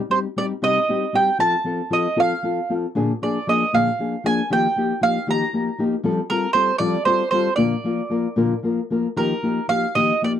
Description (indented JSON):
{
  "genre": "mexican folk, mariachi",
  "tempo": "77 BPM (dotted quarters)",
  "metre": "6/8",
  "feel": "straight",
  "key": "Bb major",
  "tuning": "A4 = 440 Hz",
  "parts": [
    { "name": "mandolin", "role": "melody", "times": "0.1-10.3 s", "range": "Bb4 to Bb5", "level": "-20 LUFS", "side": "right 4 dB", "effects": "none" },
    { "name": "nylon-string guitar", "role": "accompaniment", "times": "0.1-10.4 s", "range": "Bb2 to Bb4", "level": "-21 LUFS", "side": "left 3 dB", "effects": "none" }
  ],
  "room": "light reverb",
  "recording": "dry, close 1970s-style studio recording",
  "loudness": "-18 LUFS",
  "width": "side -9 dB against mid",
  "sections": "0.0-9.2 A section; 9.2-10.4 B section",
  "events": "none",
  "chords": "0.0 Cm; 1.4 F; 2.9 Bb7; 4.5 Ebadd9; 6.0 Fadd9; 7.6 Bb; 9.2 Ebadd9"
}